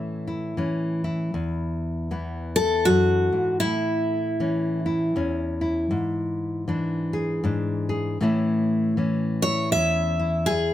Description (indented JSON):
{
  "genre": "folk",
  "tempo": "79 BPM",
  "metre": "3/4",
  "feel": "swing 59% on 8ths",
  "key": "unclear",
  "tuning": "A4 = 440 Hz",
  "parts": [
    { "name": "picked steel-string acoustic guitar", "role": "melody", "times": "0.0-4.8, 9.4-10.7 s", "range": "E4 to E5", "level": "-22 LUFS", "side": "equal", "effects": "none" },
    { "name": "nylon-string guitar", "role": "accompaniment", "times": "0.0-10.7 s", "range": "E2 to G#4", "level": "-24 LUFS", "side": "left 1 dB", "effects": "none" }
  ],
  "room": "light reverb",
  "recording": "none",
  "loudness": "-22 LUFS",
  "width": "side -12 dB against mid",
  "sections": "0.0-1.3 A section; 1.3-10.7 B section",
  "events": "steel-string acoustic guitar solo 1.3-10.7",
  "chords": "0.0 A; 1.3 E5; 3.6 Aadd9; 5.9 E7/G#; 8.2 A"
}